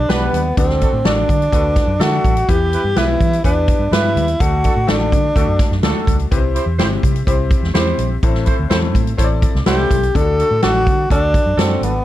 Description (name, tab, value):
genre	uptempo 1960s-style soul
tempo	125 BPM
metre	4/4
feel	straight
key	unclear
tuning	A4 = 445 Hz
part	breathy tenor saxophone	melody	0.0-5.8, 9.7-12.0 s	B3 to A4	-18 LUFS	equal	none
part	clear upright piano	accompaniment	0.0-12.0 s	A2 to E5	-24 LUFS	left 7 dB	none
part	vintage muted fingered electric bass	bass	0.0-12.0 s	G1 to E3	-19 LUFS	equal	none
part	mellow horn section	second line	0.1-11.9 s	D4 to C5	-23 LUFS	right 3 dB	none
part	swinging big-band drum kit	drums	0.1-11.9 s	hi-hat, kick drum, snare drum	-17 LUFS	equal	none
room	light reverb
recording	dark, warm production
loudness	-13 LUFS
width	side -14 dB against mid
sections	0.0-12.0 A section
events	none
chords	0.0 G; 0.6 D; 2.5 Em; 4.4 D; 6.3 C; 8.2 Am; 10.1 D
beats	0.10 | 0.57 1.05 1.53 2.01 | 2.49 2.96 3.44 3.92 | 4.40 4.88 5.36 5.84 | 6.32 6.79 7.27 7.75 | 8.23 8.71 9.19 9.67 | 10.15 10.63 11.11 11.59